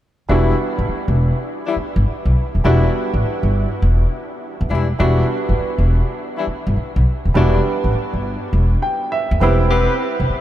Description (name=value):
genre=R&B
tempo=102 BPM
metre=4/4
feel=swing 67% on 16ths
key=E minor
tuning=A4 = 440 Hz
part: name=warm concert grand piano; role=accompaniment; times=0.3-10.4 s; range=G3 to G5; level=-22 LUFS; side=right 3 dB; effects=wide subtle chorus
part: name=mellow horn section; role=stabs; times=0.3-10.0 s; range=E3 to B4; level=-24 LUFS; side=left 4 dB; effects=analog delay
part: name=upright bass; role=bass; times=0.3-10.3 s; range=D#1 to E2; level=-16 LUFS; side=equal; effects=none
room=moderate huge ambient reverb, RT60 7.9 s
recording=dreamy mix soaked in reverb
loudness=-15 LUFS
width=side -12 dB against mid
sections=0.3-5.0 A section; 5.0-10.4 B section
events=grand piano fill 8.5-9.7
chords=0.3 Em7; 9.4 Cmaj7